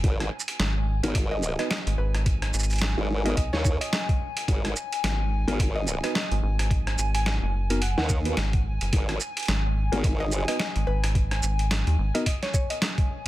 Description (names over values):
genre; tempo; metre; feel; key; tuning
glitch hop; 108 BPM; 4/4; swing 58% on 16ths; G# minor; A4 = 440 Hz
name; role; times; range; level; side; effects
formant-sweep wobble bass; bass; 0.0-10.5 s; G#1 to D#2; -26 LUFS; equal; chorus
rubbery square bass; bass; 0.0-13.3 s; F#1 to D#2; -25 LUFS; equal; none
boom bap sampler-style drum kit; drums; 0.0-13.3 s; hi-hat, rim click, shaker, snare drum; -30 LUFS; right 1 dB; none
electronic kick drum; drums; 0.0-13.1 s; none; -25 LUFS; equal; none
warbly tape-like pad; texture; 0.0-13.3 s; G#5; -36 LUFS; left 2 dB; chorus, built-in reverb, phaser, sidechain pumping
mellow tine electric piano; stabs; 1.0-12.2 s; B3 to B4; -32 LUFS; right 1 dB; phaser, sidechain pumping, dub echo
woody wave-folded pluck; melody; 1.3-13.3 s; B4 to G#5; -36 LUFS; left 1 dB; chorus, dub echo
room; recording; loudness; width
little or no reverb; none; -23 LUFS; side -16 dB against mid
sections
0.0-13.3 A section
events
none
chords
0.0 G#5